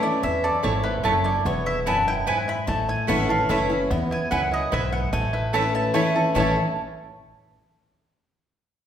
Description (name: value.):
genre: bluegrass.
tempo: 147 BPM.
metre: 3/4.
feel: straight.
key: A major.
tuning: A4 = 441 Hz.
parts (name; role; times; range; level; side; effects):
mandolin; melody; 0.0-6.5 s; B4 to B5; -28 LUFS; left 1 dB; none.
picked steel-string acoustic guitar; accompaniment; 0.0-6.5 s; E2 to E4; -26 LUFS; left 2 dB; none.
bluegrass banjo; arpeggios; 0.0-6.6 s; A3 to A4; -26 LUFS; right 2 dB; none.
upright bass; bass; 0.2-6.5 s; E1 to E2; -29 LUFS; equal; none.
mandolin; stabs; 0.6-6.5 s; A3 to A5; -28 LUFS; right 3 dB; none.
room: wet recital hall reverb, RT60 1.4 s.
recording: recorded in a church or concert hall.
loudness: -20 LUFS.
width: side -9 dB against mid.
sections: 0.0-3.9 A section; 3.9-6.4 B section; 6.4-7.6 C section.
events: none.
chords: 0.0 A; 1.5 E; 2.7 A; 3.9 E; 5.1 A.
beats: | 0.23 0.64 1.05 | 1.46 1.87 2.27 | 2.68 3.09 3.50 | 3.91 4.32 4.72 | 5.13 5.54 5.95 | 6.36.